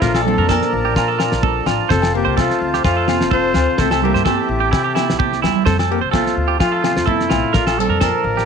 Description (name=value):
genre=highlife guitar band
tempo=128 BPM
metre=4/4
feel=swing 54% on 16ths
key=F major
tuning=A4 = 440 Hz
part: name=mellow trumpet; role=melody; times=0.0-8.5 s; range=E4 to C5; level=-21 LUFS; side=equal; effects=none
part: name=archtop guitar, miked and amplified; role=second line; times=0.0-8.5 s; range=A3 to F4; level=-26 LUFS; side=left 16 dB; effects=none
part: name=fingerpicked steel-string acoustic guitar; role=accompaniment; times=0.0-8.5 s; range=F2 to A4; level=-26 LUFS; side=left 14 dB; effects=none
part: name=accordion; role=sustained chords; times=0.0-8.5 s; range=Bb4 to Bb5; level=-29 LUFS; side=right 3 dB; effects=light tremolo tuning
part: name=clean electric guitar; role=arpeggios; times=0.0-8.5 s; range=E4 to C5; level=-21 LUFS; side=right 15 dB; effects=slapback echo
part: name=upright bass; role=bass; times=0.0-8.5 s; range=F1 to F3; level=-22 LUFS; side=equal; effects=none
part: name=damped 70s drum kit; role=drums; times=0.0-8.4 s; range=kick drum, snare drum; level=-21 LUFS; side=left 1 dB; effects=none
part: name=congas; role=percussion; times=0.0-8.1 s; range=none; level=-24 LUFS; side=right 14 dB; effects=none
part: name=agogo bells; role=percussion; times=0.2-8.1 s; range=none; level=-27 LUFS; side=left 18 dB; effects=none
room=light reverb, small room ambience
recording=1960s-style stereo with parts hard left and right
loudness=-14 LUFS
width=side -6 dB against mid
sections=0.0-8.5 A section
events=drum fill 5.3-5.7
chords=0.0 Bbmaj7; 1.9 F; 3.8 C6; 5.7 F; 7.5 Bbmaj7